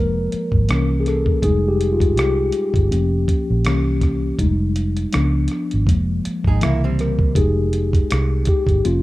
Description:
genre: R&B, neo-soul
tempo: 81 BPM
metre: 4/4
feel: swing 56% on 16ths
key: F minor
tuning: A4 = 439 Hz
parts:
  - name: mellow tine electric piano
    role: accompaniment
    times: 0.0-9.0 s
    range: Db3 to Bb4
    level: -20 LUFS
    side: left 2 dB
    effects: medium stereo tremolo
  - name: vintage muted fingered electric bass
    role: bass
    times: 0.0-9.0 s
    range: F1 to Db2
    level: -20 LUFS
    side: right 1 dB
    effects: none
  - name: dusty soul sampler-style drum kit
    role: drums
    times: 0.3-9.0 s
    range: hi-hat, kick drum, rim click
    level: -20 LUFS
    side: right 1 dB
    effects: none
  - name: archtop guitar, miked and amplified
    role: second line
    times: 6.5-7.3 s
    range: G3 to Ab4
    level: -27 LUFS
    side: right 5 dB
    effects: none
room: light reverb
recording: rough home demo mix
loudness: -16 LUFS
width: side -18 dB against mid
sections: 0.0-9.0 A section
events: tine electric piano solo 0.0-9.0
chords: 0.0 Fmadd11; 0.7 C7b9; 1.4 Fm9; 2.9 Gm7b5/F; 3.6 C7b9; 4.4 Fm9; 5.1 Db7b9; 5.9 Fmadd11; 6.6 C7b9; 7.4 Fm9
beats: 0.69 | 1.43 2.17 2.91 3.65 | 4.39 5.13 5.87 6.61 | 7.35 8.09 8.83

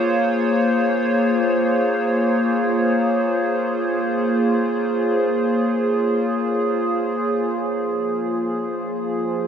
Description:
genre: ambient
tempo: free time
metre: none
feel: none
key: unclear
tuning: A4 = 441 Hz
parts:
  - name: evolving wavetable pad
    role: solo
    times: 0.0-9.5 s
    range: F3 to Db5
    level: -18 LUFS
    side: equal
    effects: chorus, built-in reverb
room: wet huge ambient reverb, RT60 7.9 s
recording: dark, warm production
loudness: -18 LUFS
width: side -8 dB against mid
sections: 0.0-7.6 A section; 7.6-9.5 B section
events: none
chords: 0.0 Bbm9; 7.6 Fmadd9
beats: free time

